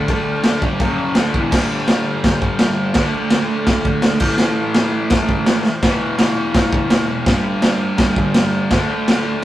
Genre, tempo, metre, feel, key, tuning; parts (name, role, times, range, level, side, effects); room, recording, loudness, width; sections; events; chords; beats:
garage rock duo or trio; 167 BPM; 4/4; straight; A4 = 438 Hz
fuzz guitar; riff; 0.0-9.4 s; E2 to D4; -19 LUFS; equal; distortion
raw garage drum kit; drums; 0.1-9.2 s; crash cymbal, kick drum, snare drum; -16 LUFS; equal
moderate studio reverb, RT60 0.6 s; rough rehearsal-room recording, tube saturation; -14 LUFS; side -14 dB against mid
0.0-1.5 A section; 1.5-9.4 B section
0.1 D5; 0.6 G5; 0.8 F#5; 1.2 E5; 1.5 G5; 3.0 D5; 4.2 A5; 5.8 E5; 7.3 G5; 8.7 D5
| 0.08 0.44 0.80 1.16 | 1.52 1.88 2.24 2.60 | 2.96 3.32 3.68 4.04 | 4.40 4.76 5.12 5.48 | 5.84 6.20 6.56 6.92 | 7.28 7.63 7.99 8.35 | 8.71 9.07 9.43